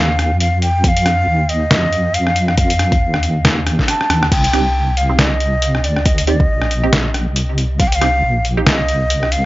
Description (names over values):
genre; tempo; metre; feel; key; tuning
deep dubstep; 138 BPM; 4/4; swing 58% on 16ths, half-time; C dorian; A4 = 442 Hz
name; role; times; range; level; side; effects
breathy ney; melody; 0.0-9.5 s; D5 to A5; -19 LUFS; equal; dub echo
deep soft wobble bass; bass; 0.0-9.5 s; Bb1 to F2; -17 LUFS; equal; chorus, transformer saturation
trip hop sampler-style drum kit; drums; 0.2-9.4 s; crash cymbal, hi-hat, rim click, snare drum; -17 LUFS; equal; none
electronic kick drum; drums; 0.8-7.9 s; none; -16 LUFS; equal; none
filtered dub chord stab; stabs; 4.5-8.7 s; C4 to G4; -23 LUFS; right 4 dB; phaser, dub echo
room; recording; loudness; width
little or no reverb; dry, gritty hardware recording, nothing above 7.5 kHz; -13 LUFS; side -18 dB against mid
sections
0.0-9.5 A section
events
drum fill 3.9-4.3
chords
0.0 N.C.; 4.3 Cm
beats
0.41 | 0.84 1.27 1.71 2.14 | 2.58 3.01 3.45 3.88 | 4.32 4.75 5.19 5.62 | 6.06 6.49 6.93 7.36 | 7.80 8.23 8.67 9.10